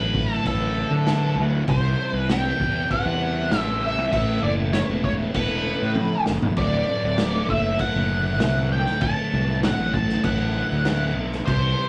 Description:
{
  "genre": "psychedelic rock",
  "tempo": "98 BPM",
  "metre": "4/4",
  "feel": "straight",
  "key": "D mixolydian",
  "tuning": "A4 = 440 Hz",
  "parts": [
    { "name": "octave-fuzz lead guitar", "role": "melody", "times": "0.0-11.9 s", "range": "A4 to A5", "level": "-28 LUFS", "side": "equal", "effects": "wah, distortion" },
    { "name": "tonewheel organ", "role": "sustained chords", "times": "0.0-11.9 s", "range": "C#3 to A4", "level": "-34 LUFS", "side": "equal", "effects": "overdrive, chorus vibrato, slow rotary speaker" },
    { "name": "thick fuzz guitar", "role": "riff", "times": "0.0-11.9 s", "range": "D2 to C5", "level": "-31 LUFS", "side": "equal", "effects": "distortion, phaser" },
    { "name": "fuzz fingered electric bass", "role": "bass", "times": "0.0-11.7 s", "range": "D1 to D3", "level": "-27 LUFS", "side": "equal", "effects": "overdrive" },
    { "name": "tanpura", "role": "drone", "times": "0.0-3.4 s", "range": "none", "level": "barely audible", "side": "none", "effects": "none" },
    { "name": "vintage drum kit", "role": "drums", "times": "0.1-11.6 s", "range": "crash cymbal, kick drum, snare drum, toms", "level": "-29 LUFS", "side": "equal", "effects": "none" }
  ],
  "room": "moderate booth ambience, RT60 0.3 s",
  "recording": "rough rehearsal-room recording",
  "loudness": "-23 LUFS",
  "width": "mono",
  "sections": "0.0-11.9 A section",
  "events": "drum fill 6.0-6.6",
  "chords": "0.0 Dadd9; 1.7 C; 4.1 A; 6.6 Dadd9",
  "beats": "0.46 1.07 | 1.68 2.29 2.90 3.51 | 4.13 4.74 5.35 5.96 | 6.57 7.18 7.79 8.41 | 9.02 9.63 10.24 10.85 | 11.46"
}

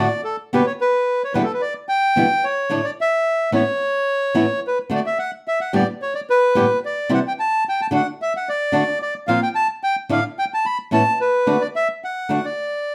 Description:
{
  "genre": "tango",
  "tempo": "110 BPM",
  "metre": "4/4",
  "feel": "rubato",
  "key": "D major",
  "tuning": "A4 = 440 Hz",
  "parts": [
    { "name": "bandoneon", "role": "melody", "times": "0.0-12.9 s", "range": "A4 to B5", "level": "-22 LUFS", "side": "equal", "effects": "none" },
    { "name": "flamenco guitar", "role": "accompaniment", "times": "0.0-12.4 s", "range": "E2 to G4", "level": "-22 LUFS", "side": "equal", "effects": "none" }
  ],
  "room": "moderate studio reverb, RT60 0.6 s",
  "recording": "none",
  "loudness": "-20 LUFS",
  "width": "mono",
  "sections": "0.0-12.9 A section",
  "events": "none",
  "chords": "0.0 D5; 0.5 Em7; 2.7 Asus4; 3.8 Aadd9; 4.9 D; 6.0 Gadd9; 7.1 C; 8.2 D; 9.3 Bbsus2; 10.4 N.C.; 10.9 Aadd9; 11.5 D",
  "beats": "| 0.51 1.06 1.61 2.15 | 2.70 3.25 3.80 4.36 | 4.91 5.46 6.00 6.55 | 7.10 7.64 8.19 8.74 | 9.28 9.83 10.38 10.93 | 11.47 12.02 12.57"
}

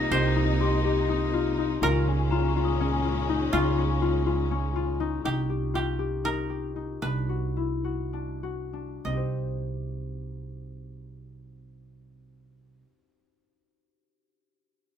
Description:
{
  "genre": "contemporary instrumental, chamber music in an uneven meter",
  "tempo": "188-246 BPM (eighths)",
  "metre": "7/8",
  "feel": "straight",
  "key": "C phrygian",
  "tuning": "A4 = 440 Hz",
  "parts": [
    { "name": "koto", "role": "melody", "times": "0.0-12.8 s", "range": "F4 to F5", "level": "-32 LUFS", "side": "right 2 dB", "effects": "none" },
    { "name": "clear symphonic string section", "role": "sustained chords", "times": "0.0-5.2 s", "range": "Bb2 to Eb4", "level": "-32 LUFS", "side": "left 1 dB", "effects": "none" },
    { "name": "concert harp", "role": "arpeggios", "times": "0.0-12.9 s", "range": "C4 to C5", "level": "-29 LUFS", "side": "left 8 dB", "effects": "none" },
    { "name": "upright bass", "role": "bass", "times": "0.0-12.8 s", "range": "C2 to Db2", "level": "-29 LUFS", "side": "right 3 dB", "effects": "none" },
    { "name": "glockenspiel with rubber mallets", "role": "texture", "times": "0.0-5.4 s", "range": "Bb5 to C7", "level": "-37 LUFS", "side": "left 4 dB", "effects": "none" }
  ],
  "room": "moderate studio reverb, RT60 0.7 s",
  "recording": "none",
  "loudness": "-25 LUFS",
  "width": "side -8 dB against mid",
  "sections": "0.0-5.2 A section; 5.2-9.0 B section; 9.0-13.5 C section",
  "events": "slowing down 5.2-9.0",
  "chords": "0.0 Cm7; 1.8 Bbm7/Db; 5.2 Cm7; 7.0 Cmaj9#11; 9.0 Cm",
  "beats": "| 0.11 0.35 0.60 0.84 1.09 1.33 1.58 | 1.82 2.06 2.31 2.55 2.80 3.04 3.29 | 3.53 3.78 4.02 4.27 4.51 4.76 5.00 | 5.25 5.49 5.74 5.99 6.24 6.50 6.76 | 7.02 7.29 7.57 7.84 8.13 8.43 8.73 | 9.05 9.37 9.68 10.00 10.32 10.64 10.96 | 11.28 11.60 11.92 12.24 12.55 12.87"
}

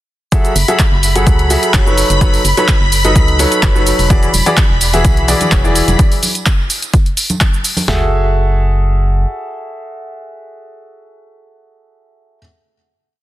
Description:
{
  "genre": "piano house",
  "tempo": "127 BPM",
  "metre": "4/4",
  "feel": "straight",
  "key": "F# minor",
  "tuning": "A4 = 440 Hz",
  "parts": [
    { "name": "string machine, violins", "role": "sustained chords", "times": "0.3-6.0 s", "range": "B5", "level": "-19 LUFS", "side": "equal", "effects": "ensemble chorus, vintage 12-bit sampler grit, sidechain pumping" },
    { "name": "clear grand piano", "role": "riff", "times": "0.3-12.4 s", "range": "E3 to F#5", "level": "-17 LUFS", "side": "equal", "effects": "sidechain pumping, digital delay" },
    { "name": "punchy analog drum machine", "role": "drums", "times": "0.3-8.0 s", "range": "kick drum, snare drum, toms", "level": "-12 LUFS", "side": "equal", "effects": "overdrive" },
    { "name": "punchy analog drum machine", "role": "drums", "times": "0.3-7.9 s", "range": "handclaps, hi-hat, shaker", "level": "-17 LUFS", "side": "equal", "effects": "overdrive" },
    { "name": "organ-like FM bass", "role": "bass", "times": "0.6-9.3 s", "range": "E1 to C#2", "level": "-15 LUFS", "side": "equal", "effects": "sidechain pumping" },
    { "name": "tambourine and congas", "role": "percussion", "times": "4.1-7.9 s", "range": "none", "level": "-23 LUFS", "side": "right 2 dB", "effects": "none" }
  ],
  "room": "digital ambience",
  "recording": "dense, heavily limited modern master",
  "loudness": "-10 LUFS",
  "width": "side -14 dB against mid",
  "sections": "0.3-7.9 drop; 7.9-11.7 final chord",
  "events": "drop 0.3-7.9",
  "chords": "0.3 F#m9; 2.0 B9/F#; 4.1 E9; 6.0 N.C.; 7.9 F#m9",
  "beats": "| 0.32 0.79 1.27 1.74 | 2.21 2.68 3.16 3.63 | 4.10 4.57 5.05 5.52 | 5.99 6.46 6.94 7.41 | 7.88 8.35 8.82 9.30 | 9.77 10.24 10.71 11.19"
}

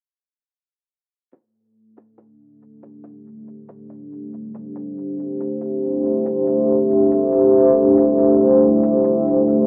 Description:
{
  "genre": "ambient dub",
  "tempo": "70 BPM",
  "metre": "4/4",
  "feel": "straight",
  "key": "unclear",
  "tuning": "A4 = 440 Hz",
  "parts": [
    { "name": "deep dark ambient pad", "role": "sustained chords", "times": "4.2-9.7 s", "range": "A3 to E5", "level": "-18 LUFS", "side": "equal", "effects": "chorus, built-in reverb" },
    { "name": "shaker", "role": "drums", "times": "1.3-9.2 s", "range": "none", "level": "-48 LUFS", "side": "equal", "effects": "overdrive, dub echo" }
  ],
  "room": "wet huge ambient reverb, RT60 6.4 s",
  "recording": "low-pass filter, telephone sound",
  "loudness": "-17 LUFS",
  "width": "mono",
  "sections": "1.3-9.7 A section",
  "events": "fade-in on ambient pad 1.3-9.7; filter sweep 1.3-9.7",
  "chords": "1.3 Cadd9",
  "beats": "| 1.32 2.18 3.04 3.90 | 4.75 5.61 6.47 7.33 | 8.18 9.04"
}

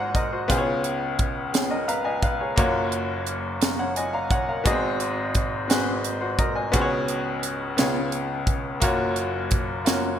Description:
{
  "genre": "slow gospel",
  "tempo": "58 BPM (dotted quarters)",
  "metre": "6/8",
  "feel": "straight",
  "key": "F# major",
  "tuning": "A4 = 437 Hz",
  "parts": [
    { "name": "bright baby grand piano", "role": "accompaniment", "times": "0.0-10.2 s", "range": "F#1 to A#5", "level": "-24 LUFS", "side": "left 1 dB", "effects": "none" },
    { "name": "crisp fusion drum kit", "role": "drums", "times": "0.1-10.0 s", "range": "hi-hat, kick drum, snare drum", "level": "-24 LUFS", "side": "right 1 dB", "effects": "gated reverb" }
  ],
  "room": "moderate plate reverb, RT60 2.0 s",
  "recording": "bright 1980s-style digital production",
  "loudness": "-22 LUFS",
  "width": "side -9 dB against mid",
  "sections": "0.0-10.2 A section",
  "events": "grand piano fill 1.5-2.6, 9.9-10.2",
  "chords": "0.5 C#7; 2.6 F#maj7; 4.7 G#7; 6.7 C#7sus4; 7.8 C#7; 8.8 F#maj7",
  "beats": "| 0.50 1.54 | 2.58 3.62 | 4.66 5.70 | 6.74 7.78 | 8.82 9.86"
}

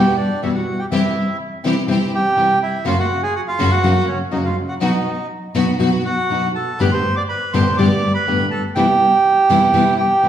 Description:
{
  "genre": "tango",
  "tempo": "123 BPM",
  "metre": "4/4",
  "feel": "rubato",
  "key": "unclear",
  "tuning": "A4 = 440 Hz",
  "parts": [
    { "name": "bandoneon", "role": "melody", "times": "0.0-10.3 s", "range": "C#4 to D6", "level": "-17 LUFS", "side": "right 3 dB", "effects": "none" },
    { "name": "nylon-string guitar", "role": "accompaniment", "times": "0.0-10.3 s", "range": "E2 to G4", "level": "-18 LUFS", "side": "left 2 dB", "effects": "none" },
    { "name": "clear symphonic string section", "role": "stabs", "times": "0.0-10.3 s", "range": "G3 to G4", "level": "-27 LUFS", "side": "right 1 dB", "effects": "none" }
  ],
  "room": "wet recital hall reverb, RT60 1.4 s",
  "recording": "recorded in a church or concert hall",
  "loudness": "-15 LUFS",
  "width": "side -10 dB against mid",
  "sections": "0.0-10.3 A section",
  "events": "none",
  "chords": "0.0 Emadd9; 0.9 C; 2.9 F#; 4.8 B; 6.8 Gadd9; 8.8 Cmaj7",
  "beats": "0.43 | 0.92 1.41 1.89 2.37 | 2.86 3.35 3.83 4.32 | 4.81 5.30 5.80 6.30 | 6.80 7.29 7.79 8.28 | 8.77 9.25 9.74 10.23"
}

